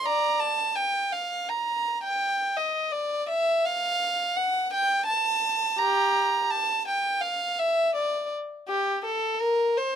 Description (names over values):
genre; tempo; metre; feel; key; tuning
classical, baroque-style suite movement for unaccompanied violin; 83 BPM; 4/4; rubato; unclear; A4 = 444 Hz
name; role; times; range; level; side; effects
warm violin; solo; 0.0-10.0 s; G4 to Bb5; -23 LUFS; right 1 dB; none
room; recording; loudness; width
little or no reverb; close, detailed microphones; -23 LUFS; side -8 dB against mid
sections
0.0-10.0 A section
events
none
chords
none